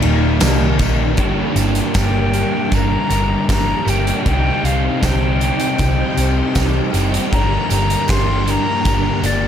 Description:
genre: rock, shoegaze and dream pop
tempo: 78 BPM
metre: 4/4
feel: straight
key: unclear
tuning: A4 = 440 Hz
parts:
  - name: silver concert flute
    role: melody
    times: 0.0-9.5 s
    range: D5 to C6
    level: -23 LUFS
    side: left 2 dB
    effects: digital delay
  - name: phased string machine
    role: sustained chords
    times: 0.0-9.5 s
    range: D4 to G5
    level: -27 LUFS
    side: equal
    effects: ensemble chorus, phaser
  - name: crunchy overdriven guitar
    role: riff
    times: 0.0-9.5 s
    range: Eb2 to G4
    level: -24 LUFS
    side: right 10 dB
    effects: reverse reverb
  - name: raw garage guitar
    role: riff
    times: 0.0-9.5 s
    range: Eb2 to G4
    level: -23 LUFS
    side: left 9 dB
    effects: overdrive, wide subtle chorus
  - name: sludgy distorted guitar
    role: riff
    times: 0.0-9.5 s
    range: Eb2 to G4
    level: -23 LUFS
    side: equal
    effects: overdrive
  - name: vintage muted picked electric bass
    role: bass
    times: 0.0-9.5 s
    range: Eb1 to C2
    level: -18 LUFS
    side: equal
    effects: none
  - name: huge arena drum kit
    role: drums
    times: 0.0-9.4 s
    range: hi-hat, kick drum, ride cymbal, snare drum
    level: -21 LUFS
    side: equal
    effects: none
  - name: tambourine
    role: percussion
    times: 0.0-9.4 s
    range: none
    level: -34 LUFS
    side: right 12 dB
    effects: none
room: studio reverb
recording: none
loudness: -14 LUFS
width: side -9 dB against mid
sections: 0.0-1.2 A section; 1.2-9.5 B section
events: none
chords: 0.0 Ebmaj7; 1.2 Gm; 4.2 Cm; 7.3 Gm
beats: 0.41 | 1.18 1.95 2.71 3.48 | 4.25 5.01 5.78 6.55 | 7.32 8.08 8.85

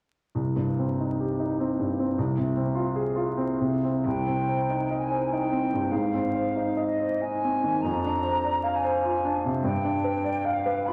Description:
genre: classical, romantic movement for piano and orchestra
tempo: 84-106 BPM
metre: 3/4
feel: rubato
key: C minor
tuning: A4 = 441 Hz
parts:
  - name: clear concert grand piano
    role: melody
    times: 0.3-10.9 s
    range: C2 to F5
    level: -27 LUFS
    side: equal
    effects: none
  - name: silver concert flute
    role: second line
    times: 4.0-10.9 s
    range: Eb5 to B5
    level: -31 LUFS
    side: equal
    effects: none
  - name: warm studio cello section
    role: bass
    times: 4.0-10.1 s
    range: F2 to C3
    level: -42 LUFS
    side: equal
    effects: none
room: wet scoring stage reverb, RT60 1.9 s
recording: vinyl crackle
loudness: -26 LUFS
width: mono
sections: 0.3-4.0 A section; 4.0-10.9 B section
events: none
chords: 0.3 Cm; 2.2 Fm/C; 4.0 Cm; 5.9 Ab; 7.8 Dm7b5/F; 9.6 G7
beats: | 0.34 0.98 1.58 | 2.17 2.74 3.36 | 4.04 4.68 5.30 | 5.92 6.54 7.21 | 7.83 8.44 9.04 | 9.63 10.22 10.86

